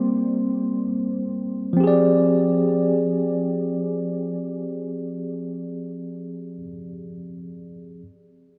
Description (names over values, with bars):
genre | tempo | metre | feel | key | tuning
R&B | free time | none | none | F dorian | A4 = 440 Hz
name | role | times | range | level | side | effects
tine electric piano | accompaniment | 0.0-8.0 s | F3 to C6 | -24 LUFS | equal | none
room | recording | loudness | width
wet huge ambient reverb, RT60 6.2 s | dreamy mix soaked in reverb | -23 LUFS | mono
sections
0.0-1.8 A section; 1.8-5.5 B section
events
slowing down 0.0-1.8; tine electric piano solo 0.0-1.8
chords
0.0 Gmadd11; 1.8 Fm69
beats
free time